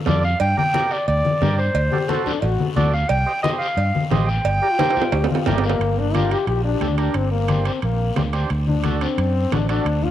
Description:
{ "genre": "latin, cumbia", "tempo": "178 BPM", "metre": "4/4", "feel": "straight", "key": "G minor, G harmonic minor from 5.8 s", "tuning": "A4 = 440 Hz", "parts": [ { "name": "clear clarinet", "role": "melody", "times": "0.1-5.4 s", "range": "C5 to G5", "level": "-22 LUFS", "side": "equal", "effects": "cassette tape" }, { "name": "overdriven combo organ", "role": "accompaniment", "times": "0.1-9.9 s", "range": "D4 to Eb5", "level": "-29 LUFS", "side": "right 7 dB", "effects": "cassette tape" }, { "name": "fingered electric bass", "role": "bass", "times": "0.1-10.1 s", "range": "G1 to G2", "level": "-21 LUFS", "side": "right 1 dB", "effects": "none" }, { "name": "congas", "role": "percussion", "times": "0.1-10.1 s", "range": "none", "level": "-25 LUFS", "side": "left 4 dB", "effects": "none" }, { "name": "guiro", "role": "percussion", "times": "0.1-10.1 s", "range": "none", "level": "-36 LUFS", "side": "left 8 dB", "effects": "none" }, { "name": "timbales and cowbell", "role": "percussion", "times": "0.1-10.0 s", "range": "none", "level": "-27 LUFS", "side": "right 8 dB", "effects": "none" }, { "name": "growling trombone", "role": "second line", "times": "1.9-10.1 s", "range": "A3 to A4", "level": "-24 LUFS", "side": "left 5 dB", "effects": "cassette tape" } ], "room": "moderate lush hall reverb, RT60 2.5 s", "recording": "home recording on cassette", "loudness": "-18 LUFS", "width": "side -12 dB against mid", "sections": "0.0-5.8 A section; 5.8-10.1 B section", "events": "drum fill 4.8-5.8; trombone solo 5.8-10.1", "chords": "0.4 Gm; 1.8 D7; 3.1 Cm; 4.5 Gm; 8.5 D7" }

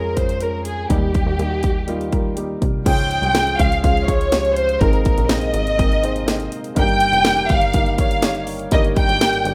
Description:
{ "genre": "piano-driven pop", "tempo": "123 BPM", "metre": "4/4", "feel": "straight", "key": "unclear", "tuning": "A4 = 440 Hz", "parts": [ { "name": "warm studio violin section", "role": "melody", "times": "0.0-9.5 s", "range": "G4 to G5", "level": "-22 LUFS", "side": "equal", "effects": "none" }, { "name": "warm upright piano", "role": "accompaniment", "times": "0.0-9.5 s", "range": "G2 to Db5", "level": "-27 LUFS", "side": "equal", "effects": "none" }, { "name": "plucky analog bass", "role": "bass", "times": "0.0-9.5 s", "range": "F1 to F2", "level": "-27 LUFS", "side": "equal", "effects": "none" }, { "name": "house drum kit", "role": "drums", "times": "0.2-9.5 s", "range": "crash cymbal, hi-hat, kick drum, snare drum", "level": "-22 LUFS", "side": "equal", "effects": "none" }, { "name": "tonewheel organ", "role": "sustained chords", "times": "2.9-9.5 s", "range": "C3 to F4", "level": "-33 LUFS", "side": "equal", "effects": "none" } ], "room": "light reverb, digital ambience", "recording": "rough home demo mix", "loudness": "-18 LUFS", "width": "mono", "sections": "0.0-2.9 A section; 2.9-9.5 B section", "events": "none", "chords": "0.0 Db; 0.9 Eb; 2.9 Db; 4.8 Abadd9; 6.8 Eb" }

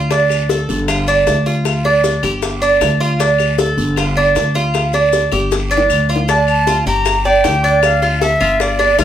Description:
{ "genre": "latin, Cuban son and guajira", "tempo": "156 BPM", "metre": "4/4", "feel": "straight", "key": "unclear", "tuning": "A4 = 435 Hz", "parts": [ { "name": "Cuban tres", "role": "arpeggios", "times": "0.0-9.0 s", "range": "D4 to D5", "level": "-15 LUFS", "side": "right 2 dB", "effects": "none" }, { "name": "upright bass", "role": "bass", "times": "0.0-9.0 s", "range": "G1 to D2", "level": "-18 LUFS", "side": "equal", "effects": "none" }, { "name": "bongos", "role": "percussion", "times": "0.1-9.0 s", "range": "none", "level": "-21 LUFS", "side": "left 5 dB", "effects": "none" }, { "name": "guiro", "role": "percussion", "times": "0.1-9.0 s", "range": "none", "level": "-30 LUFS", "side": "right 3 dB", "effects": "none" }, { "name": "maracas", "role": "percussion", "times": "0.1-9.0 s", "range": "none", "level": "-30 LUFS", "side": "left 6 dB", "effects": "none" }, { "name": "claves", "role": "percussion", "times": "0.3-9.0 s", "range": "none", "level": "-26 LUFS", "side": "left 11 dB", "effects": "none" }, { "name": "silver concert flute", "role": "melody", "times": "6.3-9.0 s", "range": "D5 to Bb5", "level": "-16 LUFS", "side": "left 1 dB", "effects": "plate reverb" } ], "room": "wet studio reverb, RT60 0.5 s", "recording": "heard from further back in the room", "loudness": "-12 LUFS", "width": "side -10 dB against mid", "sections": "0.0-6.3 A section; 6.3-9.0 B section", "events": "drum fill 5.5-6.3", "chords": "0.1 D5; 0.9 G5; 3.2 D5; 4.0 G5; 7.8 Dmadd9" }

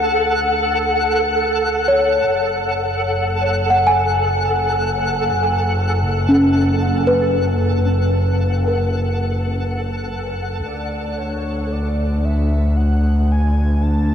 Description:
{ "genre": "ambient", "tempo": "free time", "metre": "none", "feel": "none", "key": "unclear", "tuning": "A4 = 440 Hz", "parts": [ { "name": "small celesta", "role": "arpeggios", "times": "0.0-14.1 s", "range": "C#4 to G#5", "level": "-20 LUFS", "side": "left 1 dB", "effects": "diffuse ambient delay" }, { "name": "rich studio double bass section", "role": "bass", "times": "0.0-14.1 s", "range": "F#1 to D2", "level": "-19 LUFS", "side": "equal", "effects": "none" }, { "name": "twinkling granular texture", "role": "texture", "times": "0.0-10.7 s", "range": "A4 to F#5", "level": "-21 LUFS", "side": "equal", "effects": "built-in reverb" }, { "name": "breathy flute-like synth lead", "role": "melody", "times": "10.7-14.1 s", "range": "C#5 to A5", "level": "-30 LUFS", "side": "equal", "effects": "analog chorus, diffuse ambient delay" } ], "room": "wet huge ambient reverb, RT60 7.5 s", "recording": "none", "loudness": "-16 LUFS", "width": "side -8 dB against mid", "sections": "0.0-10.7 A section; 10.7-14.1 B section", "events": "fade-in on double bass section 0.0-10.7", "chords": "0.0 D; 2.3 F#madd9; 10.7 D5" }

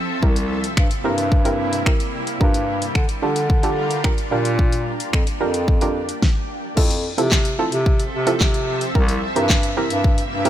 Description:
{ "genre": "dance-pop", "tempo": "110 BPM", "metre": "4/4", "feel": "straight", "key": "F major", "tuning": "A4 = 441 Hz", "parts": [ { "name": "shimmering ambient pad", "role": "sustained chords", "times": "0.0-10.5 s", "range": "C3 to E5", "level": "-27 LUFS", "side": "equal", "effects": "chorus, built-in reverb, sidechain pumping" }, { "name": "soft round pluck", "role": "accompaniment", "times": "0.2-10.5 s", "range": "C4 to Bb4", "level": "-24 LUFS", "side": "right 3 dB", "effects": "chorus, sidechain pumping" }, { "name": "warm bass clarinet", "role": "bass", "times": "0.2-10.5 s", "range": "C2 to D3", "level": "-23 LUFS", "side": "equal", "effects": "sidechain pumping" }, { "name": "pop drum kit", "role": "drums", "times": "0.2-10.5 s", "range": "crash cymbal, finger snaps, handclaps, hi-hat, kick drum, snare drum", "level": "-19 LUFS", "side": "equal", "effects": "none" } ], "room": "little or no reverb", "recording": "none", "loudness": "-17 LUFS", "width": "side -11 dB against mid", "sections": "0.0-6.8 A section; 6.8-10.5 B section", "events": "none", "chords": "0.2 C7; 2.4 Gm7; 4.3 Bb6; 6.8 Fmaj7; 9.0 C7" }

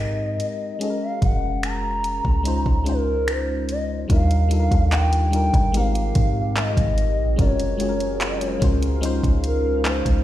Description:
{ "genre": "contemporary R&B", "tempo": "73 BPM", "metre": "4/4", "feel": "straight", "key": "Eb major", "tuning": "A4 = 440 Hz", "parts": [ { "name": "gliding portamento lead", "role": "melody", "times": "0.0-10.2 s", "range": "Bb4 to Bb5", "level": "-26 LUFS", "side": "equal", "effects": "chorus, digital delay" }, { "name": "FM electric piano", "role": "accompaniment", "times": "0.0-10.2 s", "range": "G3 to C5", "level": "-27 LUFS", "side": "left 3 dB", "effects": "chorus" }, { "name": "clean 808-style bass", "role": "bass", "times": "0.0-10.2 s", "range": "F1 to Ab2", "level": "-22 LUFS", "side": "equal", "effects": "none" }, { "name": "smooth R&B drum kit", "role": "drums", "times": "0.4-10.2 s", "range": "finger snaps, handclaps, hi-hat, kick drum", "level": "-23 LUFS", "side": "equal", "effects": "none" }, { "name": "deep dark ambient pad", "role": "sustained chords", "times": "4.8-10.2 s", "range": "Db3 to F5", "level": "-32 LUFS", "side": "equal", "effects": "chorus, built-in reverb, sidechain pumping" } ], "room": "digital ambience", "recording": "played on a big sound system in a bare room, stone room reverb", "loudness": "-19 LUFS", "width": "side -13 dB against mid", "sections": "0.0-4.1 A section; 4.1-10.2 B section", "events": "none", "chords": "0.0 Abmaj9; 0.8 Gbmaj9; 2.5 Dbmaj9; 4.1 Ebmaj9; 5.7 Abmaj9; 7.4 Gbmaj9; 9.0 Dbmaj9" }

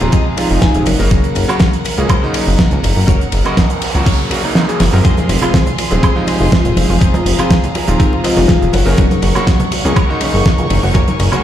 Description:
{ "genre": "nu-disco, nu disco", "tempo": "122 BPM", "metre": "4/4", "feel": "straight", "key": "unclear", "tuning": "A4 = 440 Hz", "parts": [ { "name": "bright electric grand piano", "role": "accompaniment", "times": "0.0-11.4 s", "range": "C3 to Bb4", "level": "-19 LUFS", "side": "right 1 dB", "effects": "sidechain pumping, ping-pong delay" }, { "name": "rich chamber violin section", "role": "sustained chords", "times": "0.0-11.4 s", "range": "Ab4 to Db6", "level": "-23 LUFS", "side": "equal", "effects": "vintage 12-bit sampler grit, sidechain pumping" }, { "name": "direct-recorded clean electric guitar", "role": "riff", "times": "0.0-11.4 s", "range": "C4 to Ab5", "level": "-24 LUFS", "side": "left 4 dB", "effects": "wide subtle chorus, ping-pong delay" }, { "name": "chorused synth bass", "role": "bass", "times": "0.0-11.3 s", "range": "Eb1 to Gb2", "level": "-14 LUFS", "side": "equal", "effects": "sidechain pumping" }, { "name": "damped 70s drum kit", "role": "drums", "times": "0.0-11.4 s", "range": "hi-hat, ride cymbal, snare drum, woodblock", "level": "-19 LUFS", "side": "right 1 dB", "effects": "none" }, { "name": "electronic kick drum", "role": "drums", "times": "0.1-11.1 s", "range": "none", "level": "-13 LUFS", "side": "equal", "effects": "none" }, { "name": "vibraphone with soft mallets", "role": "melody", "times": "0.4-0.9, 5.9-8.8 s", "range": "Eb4 to Ab4", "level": "-22 LUFS", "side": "left 3 dB", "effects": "tape echo" }, { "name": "noise sweep", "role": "sound effects", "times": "3.3-5.0 s", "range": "none", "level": "-25 LUFS", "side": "right 4 dB", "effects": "none" }, { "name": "analog pluck", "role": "arpeggios", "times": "5.0-11.4 s", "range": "F3 to Gb4", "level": "-26 LUFS", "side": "right 1 dB", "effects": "none" }, { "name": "congas", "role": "percussion", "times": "5.0-11.4 s", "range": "none", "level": "-20 LUFS", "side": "right 1 dB", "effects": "none" } ], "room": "light reverb, studio reverb", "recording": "played on a big sound system in a bare room, large studio reverb", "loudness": "-11 LUFS", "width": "side -11 dB against mid", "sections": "0.0-11.4 A section", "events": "clean electric guitar fill 0.4-1.1, 8.0-9.0; noise sweep 3.3-5.0; kick drops out 4.6-5.0; drum fill 4.8", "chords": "0.0 Fm; 0.9 Gb; 5.0 Fm; 8.7 Gb" }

